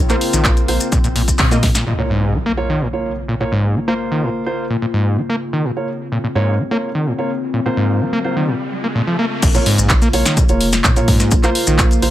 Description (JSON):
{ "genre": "acid house", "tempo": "127 BPM", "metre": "4/4", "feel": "straight", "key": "Bb minor", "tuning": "A4 = 436 Hz", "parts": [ { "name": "warbly tape-like pad", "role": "sustained chords", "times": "0.0-12.1 s", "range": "Db3 to F4", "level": "-24 LUFS", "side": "left 2 dB", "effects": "chorus, built-in reverb, sidechain pumping" }, { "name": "warm sub bass", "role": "bass", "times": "0.0-1.7, 9.4-12.1 s", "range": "F1 to Bb2", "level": "-20 LUFS", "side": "equal", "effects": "sidechain pumping" }, { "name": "overdriven acid bass", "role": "riff", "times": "0.1-11.9 s", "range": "Ab2 to Bb3", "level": "-19 LUFS", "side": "equal", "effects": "distortion" }, { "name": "dark grand piano", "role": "stabs", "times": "0.1-12.1 s", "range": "Bb3 to Eb5", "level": "-23 LUFS", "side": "right 2 dB", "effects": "vintage 12-bit sampler grit, dub echo" }, { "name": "punchy analog drum machine", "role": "drums", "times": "0.1-1.8, 9.4-12.1 s", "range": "crash cymbal, handclaps, hi-hat, rim click, snare drum", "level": "-20 LUFS", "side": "equal", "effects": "none" }, { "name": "maracas", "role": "percussion", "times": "0.1-1.8, 9.4-12.0 s", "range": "none", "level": "-23 LUFS", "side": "left 4 dB", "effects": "none" }, { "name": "electronic kick drum", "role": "drums", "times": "0.4-1.7, 9.4-11.9 s", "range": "none", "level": "-15 LUFS", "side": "equal", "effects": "none" }, { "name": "impact and riser", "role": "sound effects", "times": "1.9-9.4 s", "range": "none", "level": "-27 LUFS", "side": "equal", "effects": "none" } ], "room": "light reverb", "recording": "none", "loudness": "-14 LUFS", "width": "side -13 dB against mid", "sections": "0.0-1.9 A section; 1.9-9.4 B section; 9.4-12.1 C section", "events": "band accent 1.4; drum fill 1.6; impact 1.9-3.8; riser 7.4-9.4; drop 9.4-12.1", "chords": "0.0 Bbm", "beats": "0.45 0.92 1.39 | 1.87 2.34 2.81 3.28 | 3.76 4.23 4.70 5.17 | 5.65 6.12 6.59 7.06 | 7.54 8.01 8.48 8.95 | 9.43 9.90 10.37 10.84 | 11.31 11.79" }